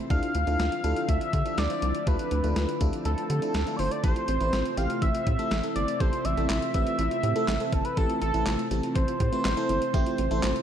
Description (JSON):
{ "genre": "synth-pop", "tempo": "122 BPM", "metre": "4/4", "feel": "straight", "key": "unclear", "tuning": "A4 = 441 Hz", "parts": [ { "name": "FM electric piano", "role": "accompaniment", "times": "0.0-10.6 s", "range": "A3 to C5", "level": "-33 LUFS", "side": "left 1 dB", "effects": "chorus, phaser, shimmer reverb" }, { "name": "soft string machine", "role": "sustained chords", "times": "0.0-10.6 s", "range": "C3 to C4", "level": "-34 LUFS", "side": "equal", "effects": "ensemble chorus, shimmer reverb" }, { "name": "soft round pluck", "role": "arpeggios", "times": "0.0-10.6 s", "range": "C4 to G4", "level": "-38 LUFS", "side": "right 2 dB", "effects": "chorus, analog delay, shimmer reverb" }, { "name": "octave-doubled lead", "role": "melody", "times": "0.1-10.6 s", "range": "A4 to F5", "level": "-29 LUFS", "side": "right 1 dB", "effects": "chorus, analog delay, shimmer reverb" }, { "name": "rubbery square bass", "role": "bass", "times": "0.1-10.5 s", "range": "G1 to D3", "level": "-28 LUFS", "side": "equal", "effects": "none" }, { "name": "clean 12-bit digital drum machine", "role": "drums", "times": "0.1-10.6 s", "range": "handclaps, hi-hat, kick drum, snare drum", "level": "-30 LUFS", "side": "equal", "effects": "analog delay" } ], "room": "moderate echo chamber reverb, RT60 1.3 s", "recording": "echo-heavy mix", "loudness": "-24 LUFS", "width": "side -9 dB against mid", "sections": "0.0-10.6 A section", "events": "none", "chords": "0.1 Dmadd9; 4.0 Am", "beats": "| 0.10 0.60 1.09 1.58 | 2.07 2.56 3.06 3.55 | 4.04 4.53 5.02 5.51 | 6.00 6.50 6.99 7.48 | 7.97 8.46 8.96 9.45 | 9.94 10.43" }